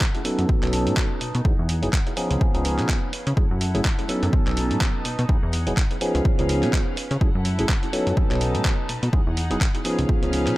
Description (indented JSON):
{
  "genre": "filtered disco house",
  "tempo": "125 BPM",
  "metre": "4/4",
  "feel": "swing 57% on 16ths",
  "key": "E major",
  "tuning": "A4 = 440 Hz",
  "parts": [
    { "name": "warm studio string section", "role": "sustained chords", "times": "0.0-10.6 s", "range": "C#4 to A5", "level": "-34 LUFS", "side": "equal", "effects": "vintage 12-bit sampler grit, sidechain pumping, low-pass filter" },
    { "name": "dusty soul sampler-style drum kit", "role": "drums", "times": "0.0-10.6 s", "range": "handclaps, hi-hat", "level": "-29 LUFS", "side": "equal", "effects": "small room ambience, sidechain pumping on cymbals, sidechain pumping on hats" },
    { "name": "electronic kick drum", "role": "drums", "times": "0.0-10.2 s", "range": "none", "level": "-22 LUFS", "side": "equal", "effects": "small room ambience" },
    { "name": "barky tine electric piano", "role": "accompaniment", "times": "0.2-10.5 s", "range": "E#3 to A4", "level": "-26 LUFS", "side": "equal", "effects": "overdrive, phaser, sidechain pumping, low-pass filter, analog delay" },
    { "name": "plucky analog bass", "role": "bass", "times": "0.4-10.5 s", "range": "E1 to C#3", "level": "-24 LUFS", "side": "equal", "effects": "sidechain pumping, low-pass filter" }
  ],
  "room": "little or no reverb",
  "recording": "echo-heavy mix",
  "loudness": "-20 LUFS",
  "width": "side -18 dB against mid",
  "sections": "0.0-10.6 A section",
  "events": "filter sweep 0.0-10.6",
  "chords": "0.5 B7; 1.4 Emaj9; 2.2 C#7; 3.4 F#m7; 4.3 B7; 5.3 Emaj9; 6.0 C#7; 7.2 F#m7; 8.2 B7; 9.1 Emaj9; 9.8 C#7",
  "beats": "0.01 0.49 0.97 | 1.45 1.93 2.41 2.89 | 3.37 3.85 4.33 4.81 | 5.29 5.77 6.25 6.73 | 7.21 7.69 8.17 8.65 | 9.13 9.61 10.09 10.57"
}